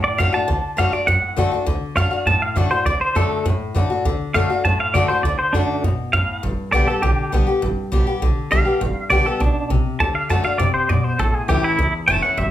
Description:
rock; 202 BPM; 4/4; straight; D mixolydian; A4 = 437 Hz
twangy electric guitar; melody; 0.0-12.5 s; D4 to A5; -20 LUFS; right 1 dB; tremolo
picked old ladder-braced acoustic guitar; accompaniment; 0.0-12.5 s; E2 to G4; -22 LUFS; left 4 dB
upright bass; bass; 0.0-12.5 s; F#1 to F#2; -21 LUFS; right 1 dB
moderate large studio reverb, RT60 0.8 s; band playing live in one room; -16 LUFS; side -12 dB against mid
0.0-1.7 A section; 1.7-12.5 B section
clean electric guitar solo 0.0-1.7
0.0 D; 6.4 G; 10.0 D; 11.2 A

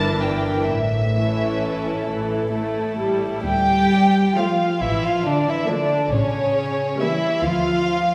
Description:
classical, slow romantic movement for string orchestra; 42-48 BPM (dotted quarters); 6/8; rubato; D minor; A4 = 440 Hz
dark chamber violin section; melody; 0.0-8.1 s; C#5 to A5; -26 LUFS; equal
dark chamber violin section; second line; 0.0-8.1 s; C#4 to Bb4; -26 LUFS; equal
warm chamber viola section; accompaniment; 0.0-7.3 s; E3 to D4; -29 LUFS; equal
warm chamber cello section; bass; 0.0-8.1 s; G2 to G3; -27 LUFS; equal
warm chamber double bass section; bass; 0.0-8.1 s; G1 to D2; -29 LUFS; equal
wet scoring stage reverb, RT60 1.8 s; heard from further back in the room; -21 LUFS; mono
0.0-3.5 A section; 3.5-8.1 B section
0.0 Em7b5/G; 0.7 A; 3.5 Dm; 6.1 A7b9; 7.4 Dm

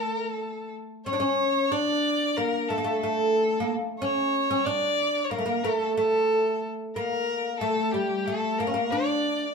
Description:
Turkish makam ensemble; 183 BPM (eighths); 9/8; straight; A makam hicaz; A4 = 439 Hz
clear violin; melody; 0.0-9.5 s; G4 to D5; -26 LUFS; left 1 dB
oud; second line; 0.0-9.5 s; G3 to D4; -27 LUFS; right 1 dB
moderate studio reverb, RT60 0.8 s; band playing live in one room; -23 LUFS; side -5 dB against mid
0.0-9.5 A section

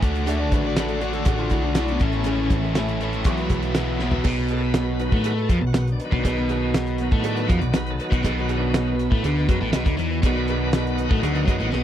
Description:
classic rock; 120 BPM; 4/4; straight; B mixolydian; A4 = 440 Hz
picked twelve-string acoustic guitar; accompaniment; 0.0-11.8 s; A2 to B4; -33 LUFS; left 3 dB
bright tonewheel organ; sustained chords; 0.0-11.8 s; D#3 to F#5; -30 LUFS; equal; slow rotary speaker, overdrive
biting overdriven guitar; riff; 0.0-11.8 s; A2 to F#4; -25 LUFS; right 1 dB
deep dub picked electric bass; bass; 0.0-11.8 s; A1 to A2; -26 LUFS; equal
damped 70s drum kit; drums; 0.0-11.8 s; crash cymbal, hi-hat, kick drum, snare drum, toms; -22 LUFS; equal
fuzz lead guitar; second line; 0.3-2.5 s; B3 to E5; -29 LUFS; left 5 dB; distortion, tape echo
cowbell; percussion; 0.3-11.8 s; -36 LUFS; right 20 dB
little or no reverb; dry, close 1970s-style studio recording; -20 LUFS; side -10 dB against mid
0.0-4.3 A section; 4.3-11.8 B section
drum fill 4.0; tonewheel organ solo 4.3-11.8
0.0 D; 2.0 A; 3.3 Bsus4; 4.3 B

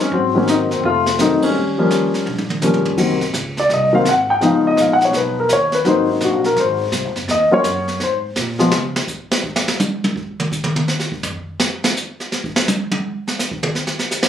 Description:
jazz piano trio; 167 BPM; 4/4; swing 65% on 8ths; Ab mixolydian; A4 = 441 Hz
dark baby grand piano; melody; 0.0-8.7 s; Eb3 to G5; -15 LUFS; left 2 dB
upright bass; bass; 0.0-8.9 s; F1 to Db3; -27 LUFS; right 1 dB
jazz brush drum kit; drums; 0.1-14.3 s; brushed snare drum, crash cymbal, hi-hat, kick drum, ride cymbal, snare drum, toms; -20 LUFS; right 1 dB
light reverb; recorded on a phone in the room, club ambience; -15 LUFS; side -9 dB against mid
0.0-3.0 A section; 3.0-14.3 B section
band accent 1.4; drum fill 2.3-3.0; grand piano solo 3.0-14.3; drum solo 8.7-14.3
0.1 Ab9; 0.8 F7b9; 1.5 Eb9; 3.0 Ab9; 4.4 Db9; 5.8 Ab9; 7.3 Ebm7; 8.0 Absus2; 8.7 N.C.

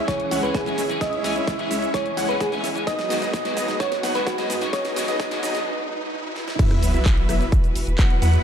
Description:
EDM, festival progressive house; 129 BPM; 4/4; straight; E major; A4 = 440 Hz
thumb-piano-like synth pluck; melody; 0.0-5.6 s; F#4 to D#5; -27 LUFS; right 1 dB; chorus, ping-pong delay
rich symphonic string section; sustained chords; 0.0-8.4 s; C#3 to B4; -34 LUFS; equal; sidechain pumping
riser and sub drop; sound effects; 1.2-8.4 s; -30 LUFS; equal
electric guitar at the edge of break-up; accompaniment; 0.1-5.4 s; G#2 to G#4; -31 LUFS; left 2 dB; ensemble chorus, sidechain pumping, ping-pong delay
saturated sub bass; bass; 0.1-8.4 s; E1 to G#2; -24 LUFS; equal; sidechain pumping
big-room dance drum kit; drums; 0.1-8.4 s; cabasa, crash cymbal, handclaps, hi-hat, rim click, snare drum; -32 LUFS; equal; high-pass filter on snare, small room ambience, high-pass filter on hats, high-pass filter on perc, high-pass filter on cymbals
electronic kick drum; drums; 0.1-8.1 s; -20 LUFS; equal; small room ambience
warm grand piano; arpeggios; 0.3-8.4 s; E4 to F#5; -31 LUFS; equal; sidechain pumping, ping-pong delay
supersaw chords; riff; 0.3-8.4 s; F#3 to F#5; -28 LUFS; equal; sidechain pumping, ping-pong delay
moderate lush hall reverb, RT60 1.8 s, digital ambience; dark, warm production, high-pass filter; -20 LUFS; side -8 dB against mid
0.0-6.6 A section; 6.6-8.4 B section
build-up 0.0-6.6; drum fill 0.0-5.7, 6.4; break 5.7-6.6; drop 6.6-8.4; impact 6.6-8.4
0.0 C#m; 2.9 G#m7; 6.6 Esus2

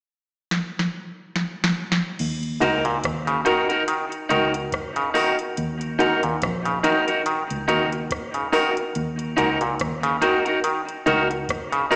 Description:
roots reggae; 71 BPM; 4/4; swing 56% on 16ths; Eb minor; A4 = 443 Hz
soft vintage rhythm box; drums; 0.5-12.0 s; crash cymbal, hi-hat, kick drum, rim click, snare drum; -28 LUFS; equal; slapback echo
vintage muted fingered electric bass; bass; 2.2-11.5 s; Bb1 to Eb2; -31 LUFS; equal
electric guitar at the edge of break-up; accompaniment; 2.6-12.0 s; Eb4 to Bb4; -26 LUFS; equal; subtle chorus, tape echo, plate reverb, slapback echo
bright clav; arpeggios; 2.6-12.0 s; Ab2 to Eb3; -28 LUFS; equal; plate reverb, slapback echo
reed electric piano; stabs; 2.6-12.0 s; Eb4 to Bb4; -28 LUFS; equal; fast tremolo, plate reverb, slapback echo
moderate club reverb, RT60 0.7 s; live gig heard through the venue's PA, recital hall reverb, small speaker sound; -23 LUFS; mono
0.0-2.2 A section; 2.2-12.0 B section
drum fill 0.5-2.2
0.0 N.C.; 2.2 Ebm

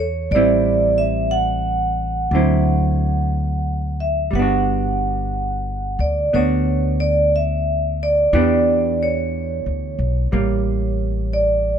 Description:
jazz ballad; 60 BPM; 4/4; swing 66% on 8ths; A4 = 440 Hz
vibraphone with medium hard mallets; melody; 0.0-11.8 s; C#5 to F#5; -20 LUFS; right 2 dB
vintage hollow-body jazz guitar; accompaniment; 0.0-11.8 s; D3 to A4; -22 LUFS; right 2 dB
upright bass; bass; 0.0-11.8 s; G1 to E2; -22 LUFS; left 1 dB
little or no reverb; dark, warm production; -17 LUFS; side -8 dB against mid
0.0-11.8 A section
0.3 Am7; 2.3 D9; 4.3 Gmaj7; 8.3 Em7; 10.3 A7b9

